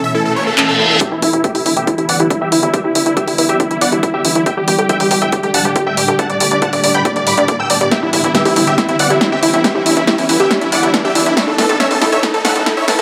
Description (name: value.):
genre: uplifting trance.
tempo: 139 BPM.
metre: 4/4.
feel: straight.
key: E dorian.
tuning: A4 = 438 Hz.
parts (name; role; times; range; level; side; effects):
dense compressed supersaw; melody; 0.0-13.0 s; E4 to E6; -18 LUFS; equal; sidechain pumping, low-pass filter, dub echo.
shimmering ambient pad; sustained chords; 0.0-13.0 s; A2 to A4; -24 LUFS; equal; chorus, built-in reverb, sidechain pumping.
unison pluck; arpeggios; 0.1-13.0 s; C#4 to A5; -23 LUFS; equal; sidechain pumping, dub echo.
reverse cymbal and riser; sound effects; 0.3-13.0 s; none; -24 LUFS; equal; none.
punchy analog drum machine; drums; 0.6-13.0 s; handclaps, hi-hat, snare drum; -20 LUFS; equal; none.
electronic kick drum; drums; 1.0-12.8 s; none; -23 LUFS; equal; high-pass filter on kick, high-pass filter on room.
tight sequencer bass; bass; 1.1-13.0 s; D1 to G2; -25 LUFS; equal; sidechain pumping, high-pass filter.
room: wet digital room reverb, RT60 1.1 s.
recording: high-pass filter.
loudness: -14 LUFS.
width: mono.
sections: 0.0-1.0 A section; 1.0-13.0 B section.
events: reverse cymbal 0.3-1.0; build-up 1.0-13.0; filter sweep on supersaw synth 1.0-13.0; filter sweep on synth pluck 1.0-13.0; drum fill 7.9-13.0.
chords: 0.0 Aadd9; 1.0 Em7; 4.5 Gsus2; 7.9 Em7; 11.4 Aadd9.